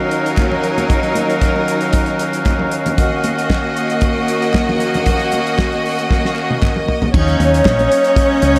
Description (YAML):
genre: disco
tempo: 116 BPM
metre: 4/4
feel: straight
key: Eb minor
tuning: A4 = 440 Hz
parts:
  - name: clear studio string section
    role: second line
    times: 0.0-8.6 s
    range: Gb3 to Eb5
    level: -19 LUFS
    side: equal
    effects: plate reverb
  - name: clear woodwind section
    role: sustained chords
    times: 0.0-8.6 s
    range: Eb2 to F5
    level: -23 LUFS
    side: equal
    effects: plate reverb
  - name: congas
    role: percussion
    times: 0.0-8.4 s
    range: none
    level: -28 LUFS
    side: equal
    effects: none
  - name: damped 70s drum kit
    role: drums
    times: 0.1-8.6 s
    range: crash cymbal, hi-hat, kick drum, snare drum, toms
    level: -21 LUFS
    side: equal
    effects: none
  - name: group handclap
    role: percussion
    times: 0.4-7.8 s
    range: none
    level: -35 LUFS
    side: equal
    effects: none
  - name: fingered electric bass with an envelope filter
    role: bass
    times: 7.1-8.6 s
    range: Bb1 to Eb2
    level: -18 LUFS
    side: equal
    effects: none
room: light reverb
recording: none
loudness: -16 LUFS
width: mono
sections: 0.0-7.1 A section; 7.1-8.6 B section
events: drum fill 6.1-7.1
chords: 0.0 Ebm7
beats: 0.39 | 0.91 1.43 1.95 2.46 | 2.98 3.50 4.02 4.54 | 5.06 5.58 6.10 6.62 | 7.13 7.65 8.16